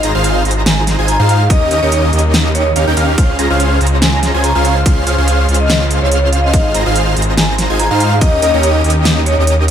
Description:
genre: future bass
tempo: 143 BPM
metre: 4/4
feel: swing 55% on 16ths, half-time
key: Db lydian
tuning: A4 = 441 Hz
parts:
  - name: muted studio string section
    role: sustained chords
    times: 0.0-9.7 s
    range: Db3 to C5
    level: -26 LUFS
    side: left 1 dB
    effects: none
  - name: airy dreamy lead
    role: arpeggios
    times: 0.0-9.7 s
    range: Eb5 to Bb5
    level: -22 LUFS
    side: equal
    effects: chorus, sidechain pumping
  - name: supersaw chords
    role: riff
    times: 0.0-9.7 s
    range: Db4 to Bb5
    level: -18 LUFS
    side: right 1 dB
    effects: sidechain pumping, tape echo
  - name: wide detuned saw bass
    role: bass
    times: 0.0-9.7 s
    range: Ab1 to Ab2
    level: -14 LUFS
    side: equal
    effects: chorus, sidechain pumping
  - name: big-room dance drum kit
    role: drums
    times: 0.0-9.7 s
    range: hi-hat, ride cymbal, snare drum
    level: -18 LUFS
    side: equal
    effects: studio reverb
  - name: vibraphone with medium mallets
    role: melody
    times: 0.7-9.4 s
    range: Db5 to Bb5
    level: -18 LUFS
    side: equal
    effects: sidechain pumping, tape echo
  - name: electronic kick drum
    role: drums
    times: 1.5-8.3 s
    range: none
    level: -12 LUFS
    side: equal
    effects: studio reverb
room: light reverb, digital ambience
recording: none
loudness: -10 LUFS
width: side -9 dB against mid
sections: 0.0-9.7 A section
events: kick drops out 9.1-9.7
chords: 0.0 Ab6; 1.5 Eb7; 3.2 Dbmaj7; 6.5 Ab6; 8.2 Eb7

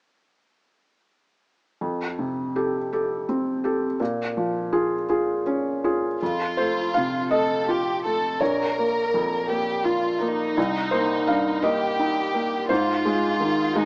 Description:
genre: neoclassical piano and strings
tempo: 55 BPM (dotted quarters)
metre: 6/8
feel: rubato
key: unclear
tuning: A4 = 440 Hz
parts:
  - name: felt-muted upright piano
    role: accompaniment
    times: 1.8-13.9 s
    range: Bb1 to F5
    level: -25 LUFS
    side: equal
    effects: none
  - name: rich chamber violin section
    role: melody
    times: 6.2-13.9 s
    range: Eb4 to Bb4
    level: -27 LUFS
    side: equal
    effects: none
room: light reverb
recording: small speaker sound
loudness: -24 LUFS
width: mono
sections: 1.8-6.2 A section; 6.2-13.9 B section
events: none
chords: 1.8 Fadd9; 4.0 Bbm7; 6.2 F; 8.4 Bbm; 10.6 Cm7; 12.7 Ab

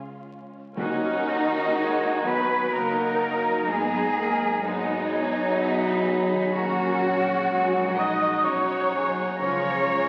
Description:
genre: cinematic, emotional film score for orchestra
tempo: 63 BPM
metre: 3/4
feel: rubato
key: unclear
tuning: A4 = 441 Hz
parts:
  - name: dark studio violin section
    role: second line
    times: 0.0-10.1 s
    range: C#4 to G#4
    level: -35 LUFS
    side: equal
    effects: none
  - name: concert harp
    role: arpeggios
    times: 0.0-10.1 s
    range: G#2 to C#6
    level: -40 LUFS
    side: equal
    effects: none
  - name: rich studio cello section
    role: bass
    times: 0.0-10.1 s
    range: D#4 to D#5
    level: -32 LUFS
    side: equal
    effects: none
  - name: warm studio double bass section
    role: bass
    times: 0.0-10.1 s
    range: F#1 to D#2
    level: -43 LUFS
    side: equal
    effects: none
  - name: warm studio violin section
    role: melody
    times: 0.8-10.1 s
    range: D#4 to D#5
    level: -33 LUFS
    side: equal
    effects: none
  - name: hollow concert flute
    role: second line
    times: 0.8-10.1 s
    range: D#5 to D#6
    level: -31 LUFS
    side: equal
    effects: none
  - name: warm oboe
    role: second line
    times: 0.8-10.1 s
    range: F#5 to B5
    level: -36 LUFS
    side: equal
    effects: none
  - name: warm studio viola section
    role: accompaniment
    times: 0.8-10.1 s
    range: E#3 to D#4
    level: -34 LUFS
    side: equal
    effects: none
  - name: mellow French horn section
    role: sustained chords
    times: 0.8-10.1 s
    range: D#3 to D#4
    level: -31 LUFS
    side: equal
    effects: none
  - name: timpani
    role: percussion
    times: 0.8-2.2 s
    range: D#3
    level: -40 LUFS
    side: equal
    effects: none
room: wet scoring stage reverb, RT60 1.6 s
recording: very old 78 rpm record, vinyl crackle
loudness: -24 LUFS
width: mono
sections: 0.8-10.1 A section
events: none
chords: 0.0 C#; 0.8 D#m7; 3.7 G#m7; 6.5 F#/A#; 9.4 C#

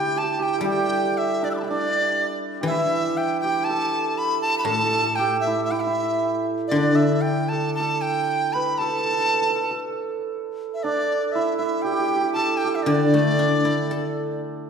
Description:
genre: chinese traditional, Chinese chamber ensemble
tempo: 59 BPM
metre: 2/4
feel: straight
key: D zhi mode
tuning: A4 = 441 Hz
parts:
  - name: dizi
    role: melody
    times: 0.0-14.4 s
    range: D5 to E6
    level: -23 LUFS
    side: equal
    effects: none
  - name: hammered dulcimer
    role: second line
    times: 0.0-14.7 s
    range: D4 to B4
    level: -25 LUFS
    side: right 4 dB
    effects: none
  - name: guzheng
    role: accompaniment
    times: 0.0-9.8, 12.9-14.7 s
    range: A2 to A4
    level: -25 LUFS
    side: left 2 dB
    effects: none
room: wet recital hall reverb, RT60 1.7 s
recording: heard from further back in the room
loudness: -20 LUFS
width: side -6 dB against mid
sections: 0.0-14.7 A section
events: none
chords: none

